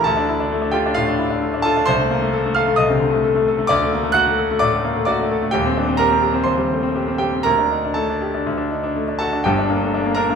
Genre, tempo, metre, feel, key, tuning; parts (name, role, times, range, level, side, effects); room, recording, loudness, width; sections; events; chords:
classical, virtuoso piano study; 117-134 BPM; 4/4; rubato; A4 = 439 Hz
bright concert grand piano; solo; 0.0-10.4 s; Eb1 to F#6; -16 LUFS; equal
wet recital hall reverb, RT60 1.6 s; minimal, uncompressed stereo recording; -16 LUFS; side -6 dB against mid
0.0-9.5 A section
0.1 Dm; 1.9 Adim/C; 3.7 D; 5.5 Cm/Eb; 7.5 Dsus4; 8.5 D; 9.5 Gm